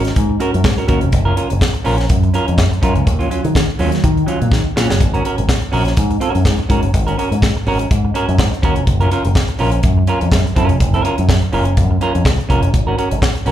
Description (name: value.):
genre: disco.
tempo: 124 BPM.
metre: 4/4.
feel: swing 56% on 16ths.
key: unclear.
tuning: A4 = 440 Hz.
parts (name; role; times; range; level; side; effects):
semi-hollow electric guitar; accompaniment; 0.0-13.5 s; Gb3 to Bb4; -20 LUFS; right 3 dB; slapback echo.
picked electric bass with an envelope filter; bass; 0.0-13.5 s; F1 to Eb3; -16 LUFS; equal; none.
tight funk drum kit; drums; 0.0-13.5 s; hi-hat, kick drum, snare drum; -17 LUFS; equal; none.
room: little or no reverb.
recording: live gig heard through the venue's PA, club reverb.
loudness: -13 LUFS.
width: side -11 dB against mid.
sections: 0.0-5.0 A section; 5.0-13.5 A section.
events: drum fill 4.5-5.0.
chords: 0.0 Ab9sus4; 1.1 Gbmaj7; 3.1 Ebm9; 5.0 Ab9sus4; 8.9 Gbmaj7; 12.7 Ab9sus4.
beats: 0.16 0.65 | 1.13 1.62 2.10 2.58 | 3.07 3.55 4.04 4.52 | 5.01 5.49 5.97 6.46 | 6.94 7.42 7.91 8.39 | 8.87 9.36 9.84 10.32 | 10.81 11.29 11.77 12.26 | 12.74 13.22.